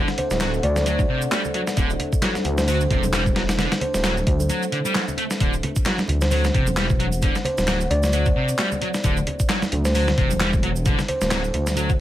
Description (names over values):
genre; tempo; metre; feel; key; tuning
breakbeat, breaks; 132 BPM; 4/4; swing 57% on 16ths; unclear; A4 = 437 Hz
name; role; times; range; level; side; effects
deep dark ambient pad; sustained chords; 0.0-12.0 s; D4 to A5; -33 LUFS; left 1 dB; chorus, built-in reverb, sidechain pumping
fuzz guitar; riff; 0.0-11.9 s; C3 to A3; -26 LUFS; equal; distortion, tape echo
dark detuned saw bass; bass; 0.0-12.0 s; D1 to D2; -23 LUFS; equal; tube saturation
dusty soul sampler-style drum kit; drums; 0.1-12.0 s; hi-hat, kick drum, snare drum; -23 LUFS; equal; none
electronic shaker and handclaps; drums; 0.1-12.0 s; none; -30 LUFS; right 1 dB; none
buzzing kalimba; melody; 0.2-11.3 s; C5 to D5; -28 LUFS; equal; old record sound, tape echo
congas; percussion; 0.2-11.8 s; none; -32 LUFS; right 2 dB; none
room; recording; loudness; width
light reverb; vinyl crackle; -19 LUFS; side -13 dB against mid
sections
0.0-12.0 A section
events
break 4.5-5.4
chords
0.0 D7